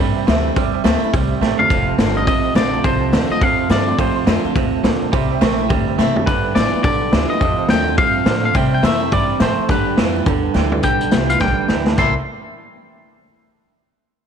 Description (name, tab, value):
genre	rockabilly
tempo	210 BPM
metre	4/4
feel	swing 62% on 8ths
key	C major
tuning	A4 = 441 Hz
part	bright upright piano	accompaniment	0.0-12.1 s	B4 to C6	-28 LUFS	right 12 dB	none
part	picked steel-string acoustic guitar	accompaniment	0.0-12.1 s	F2 to F4	-24 LUFS	left 10 dB	none
part	twangy electric guitar	riff	0.0-12.1 s	F2 to A4	-21 LUFS	right 14 dB	none
part	upright bass	bass	0.0-12.1 s	F1 to C3	-23 LUFS	left 1 dB	none
part	vintage drum kit	drums	0.3-12.1 s	crash cymbal, hi-hat, kick drum, snare drum, toms	-19 LUFS	left 1 dB	none
part	twangy electric guitar	melody	1.6-12.1 s	B4 to C6	-20 LUFS	left 4 dB	tape echo
room	light reverb, studio reverb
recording	1960s-style stereo with parts hard left and right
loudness	-14 LUFS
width	side -7 dB against mid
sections	0.0-10.8 A section; 10.8-12.0 B section; 12.0-13.1 C section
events	drum fill 1.4, 6.0, 10.5, 11.4-12.0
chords	0.0 C; 1.7 F7; 5.1 C7; 6.3 G7; 7.4 F7; 8.5 C7; 9.7 G7; 12.0 C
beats	0.27 | 0.56 0.84 1.13 1.41 | 1.70 1.98 2.27 2.56 | 2.84 3.13 3.41 3.70 | 3.98 4.27 4.55 4.84 | 5.12 5.41 5.70 5.98 | 6.27 6.55 6.84 7.12 | 7.41 7.69 7.98 8.26 | 8.55 8.84 9.12 9.41 | 9.69 9.98 10.26 10.55 | 10.84 11.12 11.41 11.69 | 11.98